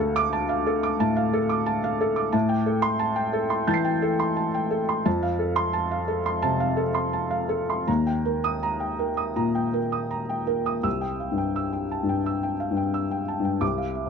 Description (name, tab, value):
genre	neoclassical minimalist piano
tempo	79-92 BPM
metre	4/4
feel	rubato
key	unclear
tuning	A4 = 440 Hz
part	felt-muted upright piano	solo	0.0-14.1 s	C2 to C7	-22 LUFS	equal	none
room	light reverb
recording	dry, close 1970s-style studio recording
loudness	-22 LUFS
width	side -6 dB against mid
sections	0.0-10.8 A section; 10.8-14.1 B section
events	none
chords	0.0 Dm; 2.3 Am7; 5.1 F; 7.9 Eb; 10.8 C6